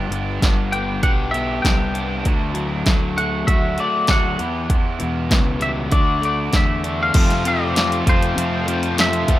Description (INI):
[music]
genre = indie rock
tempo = 98 BPM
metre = 4/4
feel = straight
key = unclear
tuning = A4 = 437 Hz
[part]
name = overdriven electric guitar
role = riff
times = 0.0-9.4 s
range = E3 to G4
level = -27 LUFS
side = right 8 dB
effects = lush chorus
[part]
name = overdriven semi-hollow guitar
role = riff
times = 0.0-9.4 s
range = E2 to G4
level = -24 LUFS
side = left 5 dB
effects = none
[part]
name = fuzz fingered electric bass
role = bass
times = 0.0-9.4 s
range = G1 to F2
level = -26 LUFS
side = equal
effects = overdrive
[part]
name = deep house drum kit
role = drums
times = 0.1-9.4 s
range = crash cymbal, hi-hat, kick drum, snare drum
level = -18 LUFS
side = equal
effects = none
[part]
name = twangy electric guitar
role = melody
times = 0.7-9.4 s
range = C5 to G5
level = -23 LUFS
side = left 2 dB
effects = spring reverb, analog delay
[part]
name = combo organ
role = sustained chords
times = 7.1-9.4 s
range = F4 to C6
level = -33 LUFS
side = equal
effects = none
[sound]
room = light reverb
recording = rough home demo mix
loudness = -17 LUFS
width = side -14 dB against mid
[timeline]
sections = 0.0-7.1 A section; 7.1-9.4 B section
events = none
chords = 0.0 G; 2.3 D; 4.4 Em; 5.9 D; 7.1 F